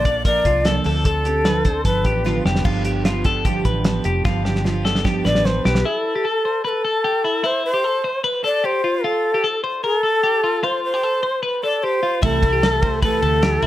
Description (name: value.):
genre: jangly indie pop.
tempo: 150 BPM.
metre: 4/4.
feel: straight.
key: C major.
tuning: A4 = 440 Hz.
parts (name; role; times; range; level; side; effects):
breathy shakuhachi; melody; 0.0-2.4, 5.3-13.7 s; A4 to D5; -20 LUFS; left 1 dB; none.
picked steel-string acoustic guitar; accompaniment; 0.0-5.9, 12.2-13.7 s; G2 to A4; -25 LUFS; right 6 dB; none.
twelve-string electric guitar; arpeggios; 0.0-13.7 s; E4 to D5; -23 LUFS; left 3 dB; none.
vintage muted fingered electric bass; bass; 0.0-5.8, 12.2-13.7 s; F1 to D2; -23 LUFS; equal; none.
cloth-damped thuddy drum kit; drums; 0.1-5.8, 12.2-13.7 s; crash cymbal, hi-hat, kick drum, ride cymbal, snare drum; -21 LUFS; equal; none.
room: light reverb, studio ambience.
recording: none.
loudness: -17 LUFS.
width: side -14 dB against mid.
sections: 0.0-2.7 A section; 2.7-5.8 B section; 5.8-13.7 C section.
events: drum fill 2.3-2.7, 4.2-5.8.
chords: 0.0 Bbmaj7; 0.9 Dm7; 1.9 G7; 5.8 C6; 7.4 Fmaj7; 9.0 Bb5; 10.4 Fadd9; 12.2 C6.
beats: 0.25 0.65 | 1.05 1.45 1.85 2.25 | 2.65 3.05 3.45 3.85 | 4.25 4.65 5.05 5.45 | 5.85 6.25 6.64 7.04 | 7.44 7.84 8.24 8.64 | 9.04 9.44 9.83 10.23 | 10.63 11.03 11.43 11.83 | 12.23 12.63 13.03 13.43.